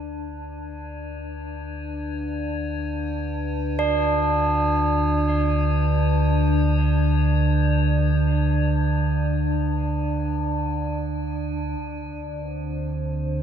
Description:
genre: dark ambient drone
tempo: free time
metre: none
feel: none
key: unclear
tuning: A4 = 444 Hz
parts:
  - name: deep rumbling drone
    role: drone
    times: 0.0-13.4 s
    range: D2 to D3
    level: -23 LUFS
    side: right 1 dB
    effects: built-in reverb
  - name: metallic inharmonic drone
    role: texture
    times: 0.0-11.8 s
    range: D4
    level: -28 LUFS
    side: left 3 dB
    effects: chorus, built-in reverb, phaser
  - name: tubular bells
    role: arpeggios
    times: 3.8-11.8 s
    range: D4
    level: -26 LUFS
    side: right 3 dB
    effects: diffuse ambient delay
  - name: dark analog pad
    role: sustained chords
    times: 11.8-13.4 s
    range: D4 to C5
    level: -36 LUFS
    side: right 1 dB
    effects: chorus
room: wet cathedral reverb, RT60 4.9 s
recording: dark, warm production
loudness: -20 LUFS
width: side -8 dB against mid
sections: 0.0-11.8 A section; 11.8-13.4 B section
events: fade-in on synth drone 0.0-11.8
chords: none

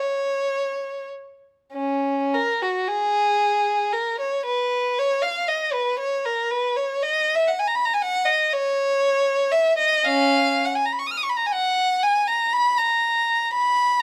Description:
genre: classical, free, expressive piece for unaccompanied violin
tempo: 46-62 BPM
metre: 4/4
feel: rubato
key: unclear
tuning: A4 = 438 Hz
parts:
  - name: rich violin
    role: solo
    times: 0.0-14.0 s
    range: C#4 to E#6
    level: -22 LUFS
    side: equal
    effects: none
room: light reverb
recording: none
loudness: -22 LUFS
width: mono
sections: 0.0-14.0 A section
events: none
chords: none

